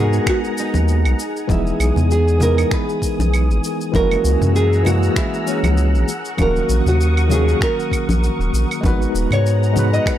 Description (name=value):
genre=sunset chillout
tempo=98 BPM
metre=4/4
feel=swing 55% on 16ths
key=G# minor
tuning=A4 = 441 Hz
part: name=nylon-string guitar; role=melody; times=0.0-10.2 s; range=C#4 to D#5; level=-23 LUFS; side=right 2 dB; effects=tape echo
part: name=barky tine electric piano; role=accompaniment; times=0.0-10.2 s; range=D#3 to B4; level=-22 LUFS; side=left 1 dB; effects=fast stereo tremolo, auto-pan, tape echo
part: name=soft string machine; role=sustained chords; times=0.0-10.2 s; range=G#4 to E6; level=-27 LUFS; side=equal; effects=ensemble chorus
part: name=round analog bass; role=bass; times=0.0-10.0 s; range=D#1 to G#2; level=-16 LUFS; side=equal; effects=none
part: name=electronic shaker, finger snaps and claves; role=drums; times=0.1-10.2 s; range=none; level=-28 LUFS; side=right 1 dB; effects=small room reverb
part: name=electronic kick drum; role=drums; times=0.3-10.2 s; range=none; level=-20 LUFS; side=equal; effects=small room reverb
part: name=congas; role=percussion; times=0.7-9.9 s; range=none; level=-25 LUFS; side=left 1 dB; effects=none
room=digital ambience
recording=dry, gritty hardware recording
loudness=-15 LUFS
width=side -12 dB against mid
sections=0.0-10.2 A section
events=none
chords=0.0 G#m9; 1.2 Emaj7; 3.9 F#9; 6.1 D#m7; 8.8 G#m9